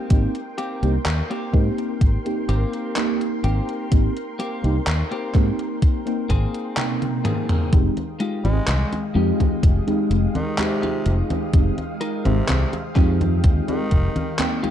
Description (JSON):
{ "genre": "vaporwave", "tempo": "63 BPM", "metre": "4/4", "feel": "straight", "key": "unclear", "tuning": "A4 = 440 Hz", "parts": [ { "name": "mellow FM electric piano", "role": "accompaniment", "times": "0.0-14.7 s", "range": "Ab3 to G5", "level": "-26 LUFS", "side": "right 1 dB", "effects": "phaser, lush chorus, analog delay" }, { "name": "soft string machine", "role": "sustained chords", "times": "0.0-14.7 s", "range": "Ab3 to Eb6", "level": "-33 LUFS", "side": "equal", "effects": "ensemble chorus" }, { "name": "clean electric guitar", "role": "riff", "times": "0.0-14.7 s", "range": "Ab3 to Bb4", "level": "-29 LUFS", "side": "left 3 dB", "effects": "lush chorus, analog delay" }, { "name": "fingered electric bass", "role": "bass", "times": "0.1-14.1 s", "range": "F1 to Ab2", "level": "-20 LUFS", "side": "equal", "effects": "none" }, { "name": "electronic kick drum", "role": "drums", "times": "0.1-14.1 s", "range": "none", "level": "-17 LUFS", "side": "equal", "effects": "overdrive" }, { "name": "gated 80s digital drum machine", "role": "drums", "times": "0.1-14.7 s", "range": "congas, handclaps, hi-hat, toms", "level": "-26 LUFS", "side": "left 1 dB", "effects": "gated reverb, overdrive" }, { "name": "raspy tenor saxophone", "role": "melody", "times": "8.4-14.4 s", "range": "C3 to Ab3", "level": "-32 LUFS", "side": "equal", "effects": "vintage 12-bit sampler grit, tape echo" } ], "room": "digital ambience", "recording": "dark, warm production", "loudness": "-19 LUFS", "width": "side -10 dB against mid", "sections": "0.0-7.7 A section; 7.7-14.7 B section", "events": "drum fill 6.8-7.7", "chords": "0.0 Abmaj9; 7.7 Fm9" }